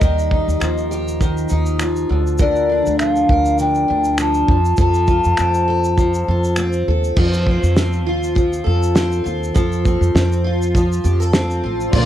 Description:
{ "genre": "acoustic pop", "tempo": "101 BPM", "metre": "4/4", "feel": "swing 55% on 16ths", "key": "unclear", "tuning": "A4 = 440 Hz", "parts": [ { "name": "mellow hollow polished pan flute", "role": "melody", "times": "0.0-6.5 s", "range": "D5 to A5", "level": "-18 LUFS", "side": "left 1 dB", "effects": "cassette tape" }, { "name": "picked steel-string acoustic guitar", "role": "accompaniment", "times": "0.0-12.1 s", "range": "Bb2 to Bb4", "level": "-20 LUFS", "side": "equal", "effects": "double-tracked left and right" }, { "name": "upright bass", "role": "bass", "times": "0.0-12.1 s", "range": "A1 to F2", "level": "-19 LUFS", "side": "equal", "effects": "none" }, { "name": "cloth-damped thuddy drum kit", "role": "drums", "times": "0.0-12.1 s", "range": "crash cymbal, finger snaps, kick drum, shaker, snare drum", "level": "-19 LUFS", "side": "equal", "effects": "none" }, { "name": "muted studio string section", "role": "sustained chords", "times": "11.9-12.1 s", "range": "D3 to D5", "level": "-20 LUFS", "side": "left 1 dB", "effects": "none" } ], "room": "little or no reverb", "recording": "home recording on cassette", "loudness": "-15 LUFS", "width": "side -11 dB against mid", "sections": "0.0-7.2 A section; 7.2-11.9 B section", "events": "none", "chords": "0.0 Ebadd9; 2.1 Bb/D; 4.5 F" }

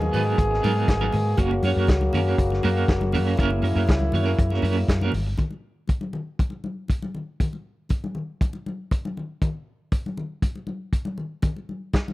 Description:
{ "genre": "disco", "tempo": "119 BPM", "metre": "4/4", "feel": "straight", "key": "unclear", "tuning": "A4 = 444 Hz", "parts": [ { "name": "clean electric guitar", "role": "accompaniment", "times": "0.0-5.3 s", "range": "F#3 to C#5", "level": "-27 LUFS", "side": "right 6 dB", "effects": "tremolo" }, { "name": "warm French horn section", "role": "sustained chords", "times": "0.0-5.4 s", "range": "B2 to G#4", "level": "-26 LUFS", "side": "left 1 dB", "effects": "none" }, { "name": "hollow-body short-scale fingered electric bass", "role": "bass", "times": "0.0-5.3 s", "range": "F#1 to G#2", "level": "-24 LUFS", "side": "equal", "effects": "none" }, { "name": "congas", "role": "percussion", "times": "0.0-12.1 s", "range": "none", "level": "-32 LUFS", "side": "left 2 dB", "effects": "none" }, { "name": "vintage drum kit", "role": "drums", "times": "0.1-12.1 s", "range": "hi-hat, kick drum, snare drum", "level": "-23 LUFS", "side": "equal", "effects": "none" } ], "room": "studio ambience", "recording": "dry, close 1970s-style studio recording", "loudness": "-22 LUFS", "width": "side -18 dB against mid", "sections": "0.0-5.4 A section; 5.4-12.1 B section", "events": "none", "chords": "0.0 G#m9; 1.4 F#; 5.4 N.C." }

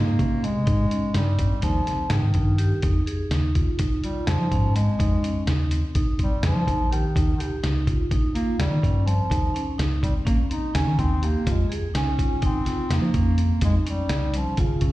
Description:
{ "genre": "progressive instrumental, band music in an uneven meter", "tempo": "250 BPM (eighths)", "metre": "9/8", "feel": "straight", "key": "Eb mixolydian", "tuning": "A4 = 438 Hz", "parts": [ { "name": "warm bass clarinet", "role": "melody", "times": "0.0-14.9 s", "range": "Db3 to Eb4", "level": "-27 LUFS", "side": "equal", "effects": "slapback echo" }, { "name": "vibraphone with medium hard mallets", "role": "arpeggios", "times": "0.0-14.9 s", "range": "C4 to Ab4", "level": "-31 LUFS", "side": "right 2 dB", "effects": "slapback echo" }, { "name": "rubbery square bass", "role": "bass", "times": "0.0-14.8 s", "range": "Ab1 to F3", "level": "-23 LUFS", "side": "equal", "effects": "none" }, { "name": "lo-fi sampler-style drum kit", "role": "drums", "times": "0.2-14.9 s", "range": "hi-hat, kick drum, snare drum", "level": "-25 LUFS", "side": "equal", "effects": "none" } ], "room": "little or no reverb", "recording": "live gig heard through the venue's PA, recital hall reverb", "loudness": "-20 LUFS", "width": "side -17 dB against mid", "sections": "0.0-14.9 A section", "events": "bass clarinet solo 0.0-14.9", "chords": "0.0 Abmaj7; 2.8 Fm7; 7.2 Eb7; 11.5 Dbmaj7" }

